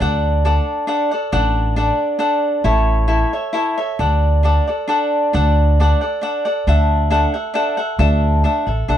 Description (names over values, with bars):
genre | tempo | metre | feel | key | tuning
mexican folk, mariachi | 136 BPM | 3/4 | rubato | D major | A4 = 439 Hz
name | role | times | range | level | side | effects
cavaquinho | accompaniment | 0.0-9.0 s | D4 to F#5 | -17 LUFS | equal | none
upright bass | bass | 0.0-9.0 s | A1 to D2 | -16 LUFS | equal | none
room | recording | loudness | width
light reverb | dry, close 1970s-style studio recording | -15 LUFS | side -10 dB against mid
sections
0.0-9.0 A section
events
none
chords
0.0 D; 1.3 D/A; 2.6 A; 4.0 D; 6.7 Dadd9